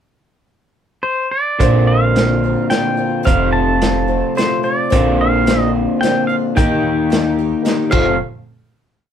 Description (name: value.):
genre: folk rock and heartland rock.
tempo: 109 BPM.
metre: 3/4.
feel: straight.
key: unclear.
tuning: A4 = 440 Hz.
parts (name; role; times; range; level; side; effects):
pedal steel guitar; melody; 1.0-8.2 s; C5 to A5; -20 LUFS; equal; none.
dark baby grand piano; accompaniment; 1.6-8.2 s; D4 to C5; -27 LUFS; right 5 dB; none.
picked twelve-string acoustic guitar; accompaniment; 1.6-8.2 s; F2 to A4; -22 LUFS; left 4 dB; none.
electric guitar through a small old amp; riff; 1.6-8.1 s; F2 to G4; -18 LUFS; left 1 dB; none.
upright bass; bass; 1.6-8.2 s; F1 to Eb2; -19 LUFS; right 1 dB; none.
vintage drum kit; drums; 1.6-8.1 s; crash cymbal, hi-hat, kick drum, snare drum; -20 LUFS; equal; none.
room: light reverb.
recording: band playing live in one room.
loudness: -13 LUFS.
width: side -8 dB against mid.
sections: 0.0-1.6 pickup bar; 1.6-8.2 pre-chorus; 8.2-9.1 final hit.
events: none.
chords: 0.0 N.C.; 1.6 Bbadd9; 3.3 F; 4.9 Bbadd9; 6.6 Eb; 7.9 F; 8.2 N.C..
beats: 0.48 1.04 | 1.59 2.15 2.71 | 3.26 3.81 4.37 | 4.92 5.47 6.02 | 6.57 7.11 7.66.